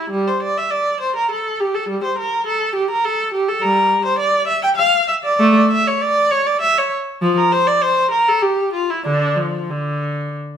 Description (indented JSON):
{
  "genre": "classical, baroque-style suite movement for unaccompanied viola",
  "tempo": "91-105 BPM",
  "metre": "3/4",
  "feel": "rubato",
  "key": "D minor from 3.6 s",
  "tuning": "A4 = 439 Hz",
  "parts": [
    { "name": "clear viola", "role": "solo", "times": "0.0-10.3 s", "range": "D3 to G5", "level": "-15 LUFS", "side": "equal", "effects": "none" }
  ],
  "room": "moderate stone room reverb, RT60 1.0 s",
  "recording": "heard from further back in the room",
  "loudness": "-15 LUFS",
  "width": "side -8 dB against mid",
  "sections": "0.0-10.6 A section",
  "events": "none",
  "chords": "none",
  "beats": "| 0.13 0.73 1.31 | 1.89 2.47 3.05 | 3.62 4.20 4.79 | 5.41 6.03 6.62 | 7.22 7.83 8.44 | 9.06 9.71"
}